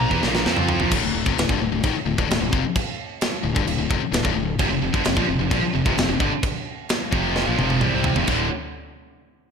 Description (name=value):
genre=heavy metal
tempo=130 BPM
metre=4/4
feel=straight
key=D minor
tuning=A4 = 441 Hz
part: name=heavy high-gain guitar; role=riff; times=0.0-0.9, 4.6-8.5 s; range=D2 to F4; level=-25 LUFS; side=right 12 dB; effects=distortion, slapback echo
part: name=high-gain distorted guitar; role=riff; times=0.0-8.5 s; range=D2 to F4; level=-24 LUFS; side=left 9 dB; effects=distortion
part: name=fuzz fingered electric bass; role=bass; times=0.0-8.5 s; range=D1 to F2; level=-27 LUFS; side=equal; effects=overdrive
part: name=tight metal drum kit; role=drums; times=0.0-8.4 s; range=china cymbal, crash cymbal, kick drum, snare drum, toms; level=-23 LUFS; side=right 1 dB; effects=none
room=moderate lush hall reverb, RT60 1.8 s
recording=big arena sound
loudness=-19 LUFS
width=side -6 dB against mid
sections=0.9-8.3 A section; 8.3-9.5 B section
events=drum fill 0.0-0.9, 7.3-8.3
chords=0.0 Bb5; 0.9 Dm; 4.6 F5; 8.3 D5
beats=0.45 | 0.91 1.37 1.83 2.29 | 2.75 3.21 3.67 4.13 | 4.59 5.05 5.51 5.97 | 6.43 6.89 7.35 7.81 | 8.27